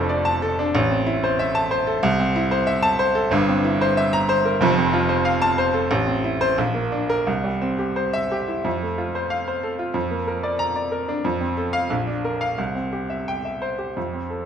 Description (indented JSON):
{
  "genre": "classical, virtuoso piano study",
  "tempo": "86-94 BPM",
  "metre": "2/4",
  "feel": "rubato",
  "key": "F major from 3.3 s",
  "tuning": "A4 = 440 Hz",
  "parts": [
    { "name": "clear baby grand piano", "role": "solo", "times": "0.0-14.5 s", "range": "F1 to Bb5", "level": "-19 LUFS", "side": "equal", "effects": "none" }
  ],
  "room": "wet recital hall reverb, RT60 1.5 s",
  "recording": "minimal, uncompressed stereo recording",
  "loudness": "-19 LUFS",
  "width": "side -8 dB against mid",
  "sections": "0.0-8.7 A section; 8.7-14.5 B section",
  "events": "none",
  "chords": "0.0 Dm/F; 0.7 Am; 2.0 Am/C; 3.3 C7/G; 4.6 F; 5.9 Am; 6.6 Bb; 7.3 C; 8.7 F; 10.0 Bb/F; 11.2 F; 11.9 Bb; 12.6 C"
}